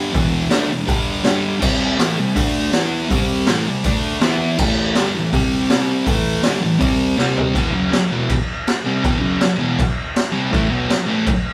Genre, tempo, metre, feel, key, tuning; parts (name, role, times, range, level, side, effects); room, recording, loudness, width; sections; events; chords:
garage rock duo or trio; 162 BPM; 4/4; straight; E minor; A4 = 440 Hz
thick fuzz guitar; riff; 0.0-11.3 s; E2 to E4; -20 LUFS; equal; distortion
raw garage drum kit; drums; 0.1-11.4 s; crash cymbal, hi-hat, kick drum, snare drum, toms; -22 LUFS; equal
moderate studio reverb, RT60 0.9 s; band playing live in one room; -18 LUFS; mono
0.0-7.6 A section; 7.6-11.5 B section
drum fill 7.2-7.6
0.2 E5; 0.9 G5; 1.6 C5; 2.4 D5; 2.7 E5; 3.1 C5; 3.9 D5; 4.2 E5; 4.6 A5; 5.3 C5; 6.1 A5; 6.8 C5; 7.6 Em; 10.5 A5